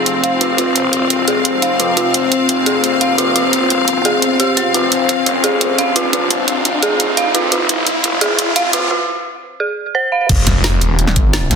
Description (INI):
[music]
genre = dark technical drum and bass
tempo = 173 BPM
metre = 4/4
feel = straight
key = unclear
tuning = A4 = 443 Hz
[part]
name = dark analog pad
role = sustained chords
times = 0.1-11.6 s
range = C4 to C5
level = -20 LUFS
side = left 3 dB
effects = chorus, phaser, sidechain pumping
[part]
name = phased detuned saw bass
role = bass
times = 0.0-11.6 s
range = Eb1 to F2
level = -20 LUFS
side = equal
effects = phaser, sidechain pumping, high-pass filter
[part]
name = riser and impact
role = sound effects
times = 0.7-11.6 s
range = none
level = -22 LUFS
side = equal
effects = none
[part]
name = clear symphonic string section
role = texture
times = 0.0-8.9 s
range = C4 to F5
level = -18 LUFS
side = left 2 dB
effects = sidechain pumping
[part]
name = drum and bass drum kit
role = drums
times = 0.1-11.6 s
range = crash cymbal, hi-hat, snare drum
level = -17 LUFS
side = right 1 dB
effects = none
[part]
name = dark detuned synth bell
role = arpeggios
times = 0.2-10.2 s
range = F4 to F5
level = -19 LUFS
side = right 3 dB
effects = chorus, sidechain pumping, low-pass filter, digital delay
[part]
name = electronic kick drum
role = drums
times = 10.3-11.2 s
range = none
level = -15 LUFS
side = equal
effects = overdrive
[sound]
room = moderate digital room reverb, RT60 1.1 s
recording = dense, heavily limited modern master, high-pass filter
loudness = -12 LUFS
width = side -6 dB against mid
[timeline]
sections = 0.0-10.3 A section; 10.3-11.6 B section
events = build-up 0.0-10.3; filter sweep on synth bell 0.0-10.3; riser 0.7-8.9; break 8.9-10.3; drop 10.3-11.6; impact 10.3-11.6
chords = 0.0 F5